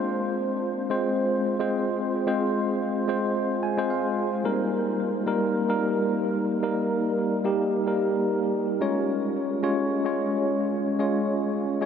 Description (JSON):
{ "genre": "pop", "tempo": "110 BPM", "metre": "4/4", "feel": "swing 55% on 16ths", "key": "Eb major", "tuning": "A4 = 441 Hz", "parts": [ { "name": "tine electric piano", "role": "solo", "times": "0.0-11.9 s", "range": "G3 to Ab5", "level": "-23 LUFS", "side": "equal", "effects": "medium stereo tremolo, analog delay" } ], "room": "wet huge ambient reverb, RT60 8.1 s", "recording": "dreamy mix soaked in reverb", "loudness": "-23 LUFS", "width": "side -7 dB against mid", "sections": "0.0-4.5 A section; 4.5-11.9 B section", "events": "tine electric piano fill 3.4-4.5", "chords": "0.0 Fm; 4.5 Eb; 8.8 Db" }